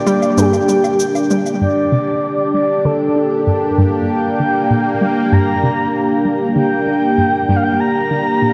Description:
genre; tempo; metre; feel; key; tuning
ambient, sequencer-driven space music; 97 BPM; 4/4; straight; G minor; A4 = 440 Hz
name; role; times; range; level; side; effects
breathy flute-like synth lead; melody; 0.0-8.5 s; G4 to Bb5; -20 LUFS; equal; subtle chorus, shimmer reverb, tape echo
sweeping resonant pad; sustained chords; 0.0-8.5 s; Bb3 to G4; -19 LUFS; equal; chorus, shimmer reverb
pulsing gated texture; texture; 0.0-1.6 s; G5; -36 LUFS; equal; chorus, built-in reverb, shimmer reverb
hollow square pluck; riff; 0.1-8.5 s; G2 to D4; -21 LUFS; equal; chorus, phaser, tape echo
shaker and woodblock; percussion; 0.1-1.6 s; none; -29 LUFS; equal; tape echo
room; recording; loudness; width
wet lush hall reverb, RT60 3.0 s; dreamy mix soaked in reverb; -15 LUFS; mono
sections
0.0-1.6 A section; 1.6-8.5 B section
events
filter sweep on synth arpeggio sound 1.6-8.5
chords
0.0 Gm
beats
0.38 1.00 | 1.61 2.23 2.85 3.47 | 4.09 4.71 5.33 5.95 | 6.56 7.18 7.80 8.42

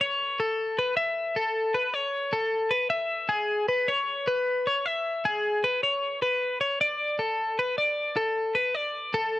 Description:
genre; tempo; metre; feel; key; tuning
rock; 154 BPM; 5/4; straight; unclear; A4 = 444 Hz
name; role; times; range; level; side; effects
twelve-string electric guitar; solo; 0.0-9.4 s; G#4 to E5; -24 LUFS; left 1 dB; none
room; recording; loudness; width
light reverb; dark, warm production; -24 LUFS; side -16 dB against mid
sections
0.0-2.9 A section; 2.9-9.4 B section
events
none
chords
none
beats
0.19 0.58 | 0.96 1.35 1.74 2.13 2.52 | 2.91 3.30 3.69 4.08 4.46 | 4.85 5.24 5.63 6.02 6.41 | 6.80 7.19 7.58 7.97 8.36 | 8.75 9.13

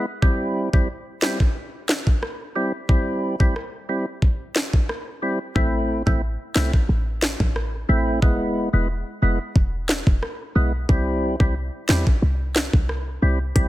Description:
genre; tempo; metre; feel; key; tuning
dancehall; 90 BPM; 4/4; straight; unclear; A4 = 440 Hz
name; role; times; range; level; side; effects
percussive tonewheel organ; accompaniment; 0.0-13.7 s; G3 to E4; -25 LUFS; equal; overdrive, slow rotary speaker
island pop drum kit; drums; 0.2-13.7 s; hi-hat, kick drum, rim click, snare drum; -20 LUFS; equal; none
short 808-style bass; bass; 5.6-13.7 s; E1 to E2; -22 LUFS; equal; none
room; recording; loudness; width
little or no reverb; none; -19 LUFS; side -16 dB against mid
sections
0.0-13.7 A section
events
hi-hats muted 2.9-5.6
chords
0.2 C; 5.6 Am; 8.2 E; 10.9 C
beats
| 0.22 0.89 1.56 2.22 | 2.89 3.56 4.22 4.89 | 5.56 6.22 6.89 7.56 | 8.22 8.89 9.56 10.22 | 10.89 11.56 12.22 12.89 | 13.56

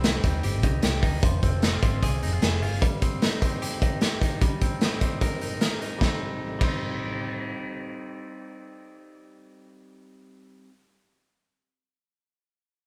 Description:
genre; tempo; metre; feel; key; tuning
jangly indie pop; 150 BPM; 4/4; straight; C minor; A4 = 439 Hz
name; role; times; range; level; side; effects
direct-recorded clean electric guitar; arpeggios; 0.0-10.7 s; F3 to Bb4; -36 LUFS; equal; none
vintage muted fingered electric bass; bass; 0.0-2.8 s; F1 to Eb2; -29 LUFS; equal; none
raw garage drum kit; drums; 0.0-6.7 s; crash cymbal, hi-hat, kick drum, snare drum; -27 LUFS; equal; none
room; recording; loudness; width
light reverb; band playing live in one room; -26 LUFS; mono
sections
0.0-6.0 A section; 6.0-9.2 B section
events
none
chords
0.0 Cm; 1.2 Fm; 2.8 Cm; 4.4 Eb6; 6.0 Cm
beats
0.04 0.43 0.83 | 1.23 1.62 2.02 2.42 | 2.82 3.22 3.61 4.01 | 4.41 4.81 5.21 5.61 | 6.01 6.41 6.80 7.20 | 7.60 8.00 8.40 8.80

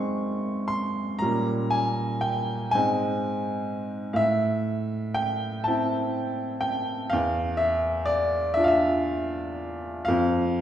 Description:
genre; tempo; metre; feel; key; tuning
classical, romantic nocturne for solo piano; 41 BPM (dotted quarters); 6/8; uneven beats, rubato; A minor from 4.2 s; A4 = 438 Hz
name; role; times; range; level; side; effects
clear upright piano; solo; 0.0-10.6 s; E2 to Db6; -24 LUFS; equal; none
room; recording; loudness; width
wet recital hall reverb, RT60 1.6 s; heard from further back in the room; -24 LUFS; side -10 dB against mid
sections
0.0-10.6 A section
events
none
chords
0.0 Ab; 1.2 Bbm6; 2.8 Ab; 4.2 Am; 7.1 Dmadd9/E; 10.1 F5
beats
| 1.23 2.75 | 4.20 5.67 | 7.13 8.57 | 10.07

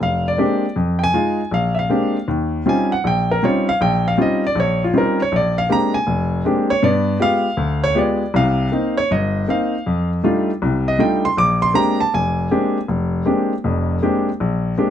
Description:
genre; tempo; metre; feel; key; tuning
solo jazz; 158 BPM; 4/4; swing 64% on 8ths; Bb mixolydian; A4 = 441 Hz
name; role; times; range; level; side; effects
warm baby grand piano; solo; 0.0-14.9 s; F1 to D6; -16 LUFS; equal; none
room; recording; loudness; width
light reverb; close, detailed microphones; -16 LUFS; side -10 dB against mid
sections
0.0-14.4 A section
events
grand piano solo 0.0-14.4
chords
0.0 Bb13; 0.8 Fm7; 1.5 Bb13; 2.3 Eb13; 5.3 Bb13; 6.8 G7b9; 8.3 Cm7; 9.9 F13; 11.4 Bb13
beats
0.00 0.38 | 0.76 1.14 1.52 1.90 | 2.28 2.66 3.04 3.42 | 3.80 4.18 4.56 4.94 | 5.32 5.70 6.07 6.45 | 6.83 7.21 7.59 7.97 | 8.35 8.73 9.11 9.48 | 9.86 10.24 10.62 11.00 | 11.38 11.76 12.13 12.51 | 12.89 13.27 13.65 14.03 | 14.40 14.78

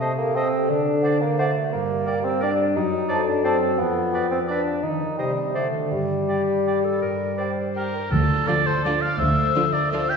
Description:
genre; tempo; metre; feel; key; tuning
classical; 154-188 BPM; 3/4; rubato; G minor; A4 = 440 Hz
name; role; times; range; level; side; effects
clear clarinet; second line; 0.0-8.1 s; G4 to C5; -31 LUFS; left 3 dB; none
clear oboe; second line; 0.0-10.2 s; A4 to G5; -27 LUFS; right 1 dB; none
mellow large flute ensemble; second line; 0.0-7.8 s; F#5 to A5; -33 LUFS; equal; none
mellow bassoon; accompaniment; 0.0-7.7 s; G3 to Eb4; -24 LUFS; right 1 dB; none
dark French horn section; sustained chords; 0.0-7.9 s; C3 to G3; -28 LUFS; equal; none
concert harp; arpeggios; 0.0-10.2 s; F2 to Eb5; -28 LUFS; left 2 dB; none
warm chamber violin section; melody; 7.8-10.2 s; F4 to E5; -31 LUFS; left 5 dB; none
dark chamber cello section; bass; 8.1-9.5 s; D2; -27 LUFS; right 2 dB; none
dark symphonic double bass section; bass; 8.1-9.5 s; D2; -28 LUFS; right 2 dB; none
timpani; percussion; 8.1-8.6 s; D3; -30 LUFS; left 2 dB; none
warm chamber violin section; second line; 8.5-10.0 s; D4 to F4; -32 LUFS; left 1 dB; none
warm chamber viola section; accompaniment; 8.5-10.0 s; D3 to F3; -30 LUFS; right 2 dB; none
room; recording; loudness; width
wet scoring stage reverb, RT60 2.0 s; heard from further back in the room, nothing above 7.9 kHz; -20 LUFS; side -5 dB against mid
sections
0.0-8.1 A section; 8.1-10.2 B section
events
none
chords
0.0 Adim/C; 0.7 D7; 1.7 Gm; 2.8 D7/F#; 3.8 G7/F; 4.8 Cm/Eb; 5.6 D7; 5.9 Gm; 8.1 Dm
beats
0.01 0.36 | 0.70 1.04 1.40 | 1.73 2.07 2.42 | 2.75 3.09 3.45 | 3.79 4.13 4.49 | 4.83 5.18 5.56 | 5.92 6.28 6.67 | 7.02 7.38 7.76 | 8.12 8.48 8.85 | 9.20 9.55 9.93

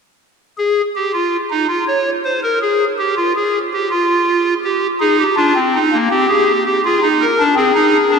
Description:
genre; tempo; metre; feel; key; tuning
classical, baroque-style 4-part fugue for pipe organ; 82 BPM; 3/4; straight; unclear; A4 = 437 Hz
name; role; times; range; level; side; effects
pipe organ, clarinet reed; solo; 0.6-8.2 s; Bb3 to Db5; -13 LUFS; equal; none
room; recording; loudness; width
wet cathedral reverb, RT60 5.9 s; dark, warm production; -13 LUFS; side -5 dB against mid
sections
0.2-8.2 A section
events
none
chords
0.2 N.C.; 4.6 Cm; 6.1 C5; 6.8 N.C.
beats
| 0.20 0.96 1.70 | 2.43 3.17 3.91 | 4.65 5.38 6.11 | 6.84 7.57

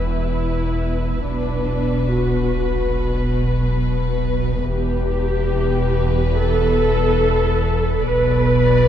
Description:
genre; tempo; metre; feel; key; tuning
cinematic, suspense film score; free time; none; none; E minor; A4 = 438 Hz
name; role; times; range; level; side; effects
warm chamber violin section; melody; 0.0-8.9 s; B4 to D5; -26 LUFS; left 8 dB; none
dark symphonic viola section; accompaniment; 0.0-8.9 s; D4 to B4; -22 LUFS; equal; none
warm studio cello section; bass; 0.0-8.9 s; E2 to B2; -23 LUFS; right 2 dB; none
warm symphonic double bass section; bass; 0.0-8.9 s; E1 to B1; -24 LUFS; right 2 dB; none
saturated sub bass; drone; 0.0-8.9 s; E1; -24 LUFS; equal; none
room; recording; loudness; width
moderate cathedral reverb, RT60 5.2 s; dark, warm production; -17 LUFS; side -10 dB against mid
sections
0.0-8.9 A section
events
none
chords
0.0 Em; 8.1 Bm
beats
free time

